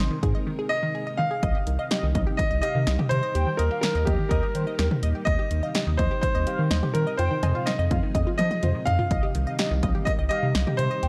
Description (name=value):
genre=synth-pop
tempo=125 BPM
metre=4/4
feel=straight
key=C minor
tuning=A4 = 441 Hz
part: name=clear concert grand piano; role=melody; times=0.0-11.1 s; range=G4 to F5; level=-30 LUFS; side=equal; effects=analog delay
part: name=string machine, full ensemble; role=sustained chords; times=0.0-11.1 s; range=C3 to Bb4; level=-37 LUFS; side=equal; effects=ensemble chorus
part: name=unison pluck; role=arpeggios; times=0.0-11.1 s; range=Eb3 to Eb5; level=-36 LUFS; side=equal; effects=analog delay
part: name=round analog bass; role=bass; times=0.0-11.1 s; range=C2 to F3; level=-27 LUFS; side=equal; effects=none
part: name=punchy analog drum machine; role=drums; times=0.2-11.1 s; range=cowbell, hi-hat, kick drum, snare drum, toms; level=-29 LUFS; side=equal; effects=none
part: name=mellow synth brass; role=second line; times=1.4-11.1 s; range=Bb4 to G5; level=-38 LUFS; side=equal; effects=chorus, analog delay
room=light reverb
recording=none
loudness=-25 LUFS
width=mono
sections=0.0-1.4 A section; 1.4-11.1 B section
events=break 0.5-1.4; drum fill 8.1-9.1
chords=0.0 Ab; 1.4 Cm; 3.3 Eb; 5.3 Cm; 7.2 Fm7; 9.1 Cm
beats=0.47 0.95 | 1.43 1.91 2.39 2.87 | 3.35 3.83 4.31 4.79 | 5.27 5.75 6.23 6.71 | 7.19 7.67 8.15 8.63 | 9.11 9.59 10.07 10.55 | 11.03